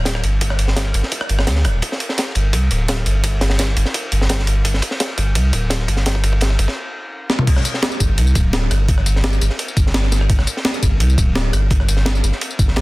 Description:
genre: liquid drum and bass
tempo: 170 BPM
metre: 4/4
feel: straight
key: unclear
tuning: A4 = 442 Hz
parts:
  - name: saturated sub bass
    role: bass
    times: 0.0-12.8 s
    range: D1 to D2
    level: -16 LUFS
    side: equal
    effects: none
  - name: breakbeat sampler-style drum kit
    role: drums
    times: 0.1-12.8 s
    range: crash cymbal, hi-hat, rim click, snare drum, tambourine, toms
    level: -22 LUFS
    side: equal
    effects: none
  - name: crunchy breakbeat drum kit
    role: drums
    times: 0.1-12.8 s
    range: ride cymbal, snare drum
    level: -24 LUFS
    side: equal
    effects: high-pass filter on cymbals, high-pass filter on snare, high-pass filter on room
  - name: electronic kick drum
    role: drums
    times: 0.1-12.7 s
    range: none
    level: -20 LUFS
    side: equal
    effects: high-pass filter on kick, high-pass filter on room
room: little or no reverb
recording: dense, heavily limited modern master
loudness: -15 LUFS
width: side -21 dB against mid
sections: 0.0-7.5 A section; 7.5-12.8 B section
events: build-up 0.0-7.5; drum fill 1.8-6.8, 7.3; stop 6.8-7.5; drop 7.5-12.8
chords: none

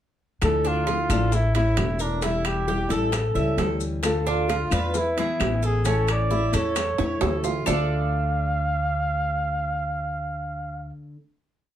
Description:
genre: latin, Cuban son and guajira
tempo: 132 BPM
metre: 4/4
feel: straight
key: D harmonic minor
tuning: A4 = 440 Hz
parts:
  - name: trumpet with bucket mute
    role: melody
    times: 0.4-10.9 s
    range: D4 to F5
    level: -27 LUFS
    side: equal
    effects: none
  - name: nylon-string guitar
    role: accompaniment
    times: 0.4-11.2 s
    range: D3 to F4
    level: -29 LUFS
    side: left 2 dB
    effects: none
  - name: upright bass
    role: bass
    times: 0.4-10.9 s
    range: E1 to E2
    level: -26 LUFS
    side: equal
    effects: none
  - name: bongos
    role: percussion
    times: 0.4-7.8 s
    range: none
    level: -35 LUFS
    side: left 2 dB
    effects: none
  - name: claves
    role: percussion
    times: 0.4-7.8 s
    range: none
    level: -37 LUFS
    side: left 8 dB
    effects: none
  - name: maracas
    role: percussion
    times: 0.4-7.8 s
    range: none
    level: -39 LUFS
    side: left 7 dB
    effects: none
  - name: timbales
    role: percussion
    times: 0.4-7.8 s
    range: none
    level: -30 LUFS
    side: right 4 dB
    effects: none
  - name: Cuban tres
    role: arpeggios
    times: 0.6-10.9 s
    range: C#4 to E5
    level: -30 LUFS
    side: right 4 dB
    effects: none
room: wet studio ambience, RT60 0.5 s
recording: heard from further back in the room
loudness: -22 LUFS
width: side -11 dB against mid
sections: 0.4-7.7 verse; 7.7-11.3 final chord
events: drum fill 7.0-7.7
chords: 0.4 Dmadd9; 1.3 A; 2.2 Emadd11; 3.1 A7; 4.0 Dm; 4.9 E; 5.9 A; 7.7 Dm

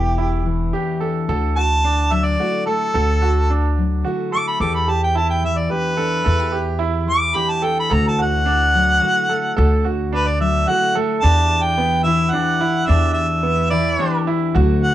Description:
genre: acoustic folk duo or small band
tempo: 109 BPM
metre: 3/4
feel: straight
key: E minor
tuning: A4 = 440 Hz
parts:
  - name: warm harmonica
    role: melody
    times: 0.0-14.9 s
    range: G4 to D6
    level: -19 LUFS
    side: equal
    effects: none
  - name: fingerpicked steel-string acoustic guitar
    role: accompaniment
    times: 0.0-14.9 s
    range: E2 to G4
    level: -25 LUFS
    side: left 7 dB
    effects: cassette tape
  - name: bright upright piano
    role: arpeggios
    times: 0.0-14.9 s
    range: B3 to A4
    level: -24 LUFS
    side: right 7 dB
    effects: cassette tape, plate reverb
  - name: upright bass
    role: bass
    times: 0.0-14.9 s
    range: E1 to E2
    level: -19 LUFS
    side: equal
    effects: none
room: moderate booth ambience, RT60 0.2 s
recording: home recording on cassette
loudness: -16 LUFS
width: side -13 dB against mid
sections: 0.0-11.2 A section; 11.2-14.9 B section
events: harmonica solo 0.0-11.2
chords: 0.0 Em7; 1.3 Dadd9; 4.6 Em7; 7.9 Dadd9; 11.2 Em7

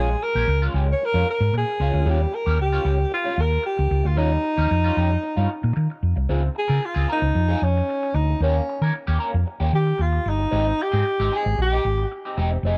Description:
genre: disco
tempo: 114 BPM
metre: 4/4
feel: straight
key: unclear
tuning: A4 = 440 Hz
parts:
  - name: breathy alto saxophone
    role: melody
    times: 0.0-12.1 s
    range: Db4 to Db5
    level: -26 LUFS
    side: equal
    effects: none
  - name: electric guitar at the edge of break-up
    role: accompaniment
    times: 0.0-12.8 s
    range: G3 to Bb4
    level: -32 LUFS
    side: equal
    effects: wah
  - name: hollow-body short-scale fingered electric bass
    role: bass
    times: 0.0-12.8 s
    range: E1 to Eb3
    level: -23 LUFS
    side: equal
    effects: none
room: small room ambience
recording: dark, warm production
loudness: -22 LUFS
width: mono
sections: 0.0-6.3 A section; 6.3-12.8 B section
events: alto saxophone solo 6.3-12.8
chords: 0.0 Bbm7; 2.1 Eb9; 6.3 Dbmaj7; 8.4 Eb7; 10.5 Abmaj7

